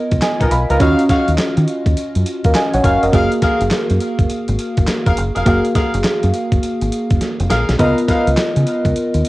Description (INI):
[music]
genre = R&B, new jack swing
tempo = 103 BPM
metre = 4/4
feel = swing 64% on 16ths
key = F# major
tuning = A4 = 440 Hz
[part]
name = FM electric piano with soft pad layer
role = accompaniment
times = 0.0-9.3 s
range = A#3 to B5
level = -18 LUFS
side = equal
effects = chorus, cassette tape
[part]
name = deep dub fingered electric bass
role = bass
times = 0.1-9.2 s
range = E#1 to D#3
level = -17 LUFS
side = equal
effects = none
[part]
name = dusty soul sampler-style drum kit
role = drums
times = 0.1-9.3 s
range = handclaps, hi-hat, kick drum, snare drum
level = -19 LUFS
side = equal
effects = none
[part]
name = warm horn section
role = stabs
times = 0.4-8.3 s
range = B3 to E#5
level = -22 LUFS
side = left 1 dB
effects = cassette tape, tape echo
[sound]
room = little or no reverb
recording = home recording on cassette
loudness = -13 LUFS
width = side -18 dB against mid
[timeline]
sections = 0.0-9.3 A section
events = drum fill 7.2-7.8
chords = 0.0 C#13; 0.8 D#m9; 3.1 F#maj9; 7.8 C#13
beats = 0.22 | 0.80 1.39 1.97 2.55 | 3.13 3.72 4.30 4.88 | 5.46 6.05 6.63 7.21 | 7.79 8.38 8.96